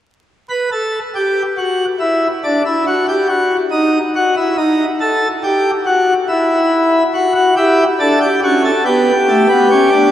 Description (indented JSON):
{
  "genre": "classical, baroque-style 4-part fugue for pipe organ",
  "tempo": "70 BPM",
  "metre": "4/4",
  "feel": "straight",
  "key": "E minor",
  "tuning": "A4 = 440 Hz",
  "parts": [
    { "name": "pipe organ, plenum", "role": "solo", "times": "0.5-10.1 s", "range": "A3 to B4", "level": "-12 LUFS", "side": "equal", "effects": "none" }
  ],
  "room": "wet cathedral reverb, RT60 6.2 s",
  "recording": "recorded in a church or concert hall, vinyl crackle",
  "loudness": "-12 LUFS",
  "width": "side -11 dB against mid",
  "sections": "0.3-10.1 A section",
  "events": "none",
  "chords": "0.3 N.C.; 7.2 Em13; 8.9 A9",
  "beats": "| 0.30 1.16 2.01 2.87 | 3.73 4.59 5.45 6.30 | 7.15 8.01 8.86 9.71"
}